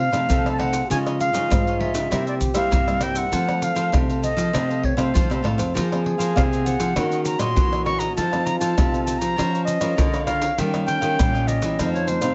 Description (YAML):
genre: samba and choro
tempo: 99 BPM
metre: 4/4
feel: straight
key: unclear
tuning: A4 = 438 Hz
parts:
  - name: silver concert flute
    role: melody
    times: 0.0-12.3 s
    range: C5 to Db6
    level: -27 LUFS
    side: equal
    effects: none
  - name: mellow trombone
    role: second line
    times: 0.0-12.3 s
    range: Db4 to A4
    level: -32 LUFS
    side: equal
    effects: tape echo
  - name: nylon-string guitar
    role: accompaniment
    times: 0.0-12.3 s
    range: F2 to Bb4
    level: -33 LUFS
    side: equal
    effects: none
  - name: nylon-string guitar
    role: bass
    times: 0.0-12.3 s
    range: F2 to G3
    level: -27 LUFS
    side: equal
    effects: none
  - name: cavaquinho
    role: accompaniment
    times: 0.1-12.3 s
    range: Eb4 to F5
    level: -35 LUFS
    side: equal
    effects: none
  - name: maracas, pandeiro, tamborim and surdo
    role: percussion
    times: 0.1-12.3 s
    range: none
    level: -26 LUFS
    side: equal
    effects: none
room: light reverb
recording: nothing above 7.9 kHz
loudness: -21 LUFS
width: mono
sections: 0.0-12.3 A section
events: none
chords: 0.0 F7/C; 0.9 Dbadd9; 2.1 C7; 3.3 F; 5.8 Fsus4; 7.0 Ebm7; 8.2 F7; 9.4 Bbm/F; 10.6 Ebadd9; 11.8 F7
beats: 0.30 | 0.91 1.51 2.12 2.72 | 3.33 3.93 4.54 5.14 | 5.75 6.36 6.96 7.57 | 8.17 8.78 9.38 9.99 | 10.59 11.20 11.80